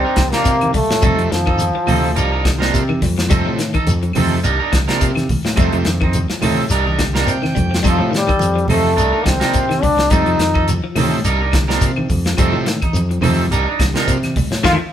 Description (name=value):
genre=afrobeat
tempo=106 BPM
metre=4/4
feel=swing 56% on 16ths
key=F mixolydian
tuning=A4 = 442 Hz
part: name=bright trombone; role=melody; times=0.0-2.5, 7.9-10.7, 14.7 s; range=F3 to F4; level=-18 LUFS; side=left 1 dB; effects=none
part: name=electric guitar at the edge of break-up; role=stabs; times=0.0-14.7 s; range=G3 to Bb4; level=-22 LUFS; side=right 4 dB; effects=none
part: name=modern bright fingered electric bass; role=bass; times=0.0-14.8 s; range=C2 to C3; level=-20 LUFS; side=equal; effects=none
part: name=clean electric guitar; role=arpeggios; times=0.2-14.7 s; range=D3 to A3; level=-24 LUFS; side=left 5 dB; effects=tremolo
part: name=tight funk drum kit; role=drums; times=0.2-14.8 s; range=hi-hat, kick drum, snare drum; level=-20 LUFS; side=equal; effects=none
part: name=claves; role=percussion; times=0.2-14.8 s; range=none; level=-32 LUFS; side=left 3 dB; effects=none
part: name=congas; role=percussion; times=0.2-14.8 s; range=none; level=-23 LUFS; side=right 1 dB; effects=none
part: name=shekere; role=percussion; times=0.2-14.8 s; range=none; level=-25 LUFS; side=left 1 dB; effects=none
part: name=combo organ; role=accompaniment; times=0.3-14.7 s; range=C3 to G5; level=-24 LUFS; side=right 3 dB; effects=none
room=moderate stone room reverb, RT60 1.1 s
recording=band playing live in one room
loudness=-14 LUFS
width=side -10 dB against mid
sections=0.0-14.9 A section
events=transistor combo organ fill 7.0-7.8; band accent 14.6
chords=0.0 Cm9; 1.0 F7; 2.2 Cm9; 3.3 F7; 4.4 Cm9; 5.6 F7; 6.7 Cm9; 7.8 F7; 9.0 Cm9; 10.1 F7; 11.2 Cm9; 12.4 F7; 13.5 Cm9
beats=0.46 | 1.03 1.59 2.16 2.73 | 3.30 3.87 4.44 5.01 | 5.57 6.14 6.71 7.28 | 7.84 8.41 8.98 9.54 | 10.11 10.68 11.24 11.81 | 12.37 12.94 13.51 14.07 | 14.64